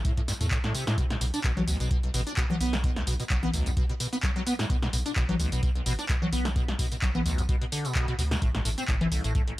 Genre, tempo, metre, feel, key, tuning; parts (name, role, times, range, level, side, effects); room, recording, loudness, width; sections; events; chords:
acid house; 129 BPM; 4/4; swing 54% on 16ths; B minor pentatonic; A4 = 440 Hz
liquid acid bass; riff; 0.0-9.5 s; A1 to D4; -31 LUFS; equal; lush chorus, sidechain pumping, tape echo
round analog bass; bass; 0.0-9.3 s; G1 to E2; -30 LUFS; equal; sidechain pumping
electronic kick drum; drums; 0.0-9.5 s; -28 LUFS; equal
punchy analog drum machine; drums; 0.0-9.6 s; congas, handclaps, hi-hat, snare drum, tambourine; -31 LUFS; left 1 dB
little or no reverb; dry, gritty hardware recording, transformer saturation; -25 LUFS; side -17 dB against mid
0.0-9.6 A section
0.0 N.C.; 1.0 Bm7; 8.4 Am7